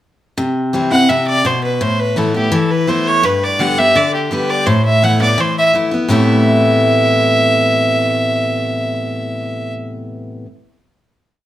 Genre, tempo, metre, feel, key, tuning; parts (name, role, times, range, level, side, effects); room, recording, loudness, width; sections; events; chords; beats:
bluegrass; 168 BPM; 4/4; straight; A minor; A4 = 439 Hz
picked steel-string acoustic guitar; accompaniment; 0.4-10.5 s; G2 to G4; -15 LUFS; left 1 dB
clear fiddle; melody; 0.9-9.7 s; G4 to F#5; -15 LUFS; right 1 dB
moderate large studio reverb, RT60 0.8 s; -12 LUFS; side -13 dB against mid
0.4-6.1 A section; 6.1-9.0 final chord
0.4 C; 1.8 Asus2; 3.2 G; 4.7 Asus2; 6.1 Amadd9
| 0.38 0.74 1.09 1.45 | 1.81 2.17 2.52 2.88 | 3.24 3.60 3.95 4.31 | 4.67 5.03 5.38 5.74 | 6.10 6.46 6.82 7.17 | 7.53 7.89 8.24 8.60